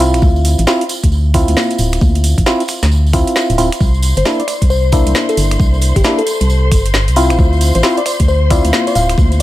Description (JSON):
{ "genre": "UK garage, two-step garage", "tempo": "134 BPM", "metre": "4/4", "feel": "swing 63% on 16ths", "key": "D minor", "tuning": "A4 = 440 Hz", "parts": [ { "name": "percussive organ stab", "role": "stabs", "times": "0.0-9.4 s", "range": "Bb3 to F4", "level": "-17 LUFS", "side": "equal", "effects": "chorus, tape echo" }, { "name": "organ-like FM bass", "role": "bass", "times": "0.0-9.4 s", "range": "D1 to D2", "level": "-13 LUFS", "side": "equal", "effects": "none" }, { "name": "garage drum kit", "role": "drums", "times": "0.0-9.4 s", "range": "congas, finger snaps, hi-hat, snare drum", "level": "-19 LUFS", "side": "equal", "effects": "overdrive" }, { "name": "tambourine", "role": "percussion", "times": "0.0-9.4 s", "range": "none", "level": "-27 LUFS", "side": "right 4 dB", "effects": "none" }, { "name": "electronic kick drum", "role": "drums", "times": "0.2-9.3 s", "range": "none", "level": "-13 LUFS", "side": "equal", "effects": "overdrive" }, { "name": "warm symphonic violin section", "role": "sustained chords", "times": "3.8-9.4 s", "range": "C5 to C6", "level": "-25 LUFS", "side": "equal", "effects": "sidechain pumping" }, { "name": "bell-like FM electric piano", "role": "melody", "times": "4.2-9.4 s", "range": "G4 to F5", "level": "-19 LUFS", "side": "left 3 dB", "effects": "chorus, tape echo" } ], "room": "little or no reverb", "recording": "none", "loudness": "-10 LUFS", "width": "side -15 dB against mid", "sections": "0.0-9.4 A section", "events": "none", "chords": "0.2 Dm9; 3.8 C7; 7.4 Dm9", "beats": "| 0.22 0.67 1.12 1.57 | 2.01 2.46 2.91 3.36 | 3.81 4.25 4.70 5.15 | 5.60 6.04 6.49 6.94 | 7.39 7.83 8.28 8.73 | 9.18" }